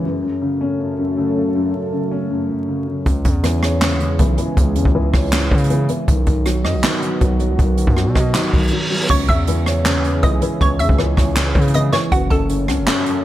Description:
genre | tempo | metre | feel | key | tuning
hip hop, trap | 159 BPM | 4/4 | half-time | C# minor | A4 = 443 Hz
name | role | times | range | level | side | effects
dark concert grand piano | accompaniment | 0.0-13.2 s | F#2 to D#5 | -21 LUFS | left 2 dB | low-pass filter
dark analog pad | sustained chords | 0.0-13.2 s | D#3 to A4 | -25 LUFS | right 1 dB | chorus
distorted 808-style bass | bass | 3.1-12.9 s | F#1 to C#3 | -19 LUFS | equal | distortion
jazz brush drum kit | drums | 3.1-13.1 s | crash cymbal, handclaps, hi-hat, kick drum, rim click, snare drum | -18 LUFS | equal | none
reverse cymbal | sound effects | 8.5-9.1 s | none | -23 LUFS | right 1 dB | none
hollow square pluck | melody | 9.1-13.2 s | F#4 to E6 | -22 LUFS | right 2 dB | chorus, low-pass filter, tape echo
room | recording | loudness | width
light reverb, small room ambience | vinyl crackle | -15 LUFS | side -13 dB against mid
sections
0.0-9.1 A section; 9.1-13.2 B section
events
reverse cymbal 8.5-9.1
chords
0.0 F#m; 3.1 C#m; 6.1 B; 9.1 C#m; 12.1 F#m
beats
| 0.04 0.42 0.80 1.17 | 1.55 1.93 2.31 2.68 | 3.06 3.44 3.82 4.19 | 4.57 4.95 5.33 5.70 | 6.08 6.46 6.83 7.21 | 7.59 7.97 8.34 8.72 | 9.10 9.48 9.85 10.23 | 10.61 10.98 11.36 11.74 | 12.12 12.49 12.87

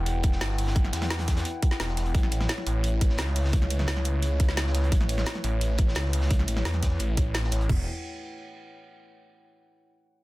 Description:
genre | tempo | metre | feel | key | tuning
dark technical drum and bass | 173 BPM | 4/4 | straight | E dorian | A4 = 441 Hz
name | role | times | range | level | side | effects
dark analog pad | sustained chords | 0.0-7.9 s | A3 to G5 | -35 LUFS | left 1 dB | chorus, sidechain pumping
snarling distorted saw bass | bass | 0.0-7.9 s | E1 to E2 | -26 LUFS | equal | distortion, tube saturation, sidechain pumping
crunchy breakbeat drum kit | drums | 0.1-7.7 s | hi-hat, snare drum | -40 LUFS | equal | high-pass filter on hats, high-pass filter on snare, high-pass filter on room
drum and bass drum kit | drums | 0.1-7.6 s | hi-hat, snare drum | -32 LUFS | equal | none
drum and bass drum kit | drums | 0.2-7.8 s | crash cymbal, kick drum, toms | -24 LUFS | equal | none
room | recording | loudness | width
digital ambience | dense, heavily limited modern master | -23 LUFS | side -19 dB against mid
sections
0.0-7.7 A section; 7.7-9.1 B section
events
drop 0.0-7.7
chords
0.0 Em; 2.1 A; 7.7 Em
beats
0.06 0.41 | 0.76 1.10 1.45 1.80 | 2.15 2.49 2.84 3.19 | 3.53 3.88 4.23 4.57 | 4.92 5.27 5.61 5.96 | 6.31 6.65 7.00 7.35 | 7.69

